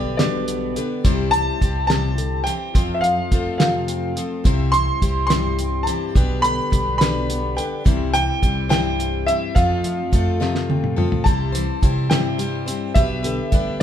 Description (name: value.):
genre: indie folk with a building arrangement.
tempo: 70 BPM (dotted quarters).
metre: 6/8.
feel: straight.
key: C major.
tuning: A4 = 445 Hz.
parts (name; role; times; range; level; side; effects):
clear upright piano; melody; 0.0-13.8 s; D5 to C6; -23 LUFS; equal; tape echo.
fingerpicked steel-string acoustic guitar; accompaniment; 0.0-13.8 s; F2 to G4; -27 LUFS; left 2 dB; none.
picked plugged-in steel-string acoustic guitar; accompaniment; 0.0-13.8 s; B2 to C5; -27 LUFS; left 5 dB; none.
upright bass; bass; 0.0-13.8 s; B1 to C3; -25 LUFS; right 1 dB; none.
cloth-damped thuddy drum kit; drums; 0.2-13.7 s; hi-hat, kick drum, snare drum, toms; -20 LUFS; right 1 dB; none.
room: moderate studio reverb, RT60 0.8 s.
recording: band playing live in one room.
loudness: -18 LUFS.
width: side -10 dB against mid.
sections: 0.0-11.3 A section; 11.3-13.8 B section.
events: drum fill 10.4-11.3.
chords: 0.0 G/B; 1.0 C; 2.7 F; 4.5 C; 6.2 G/B; 7.9 C; 9.6 F; 11.3 C; 13.0 G/B.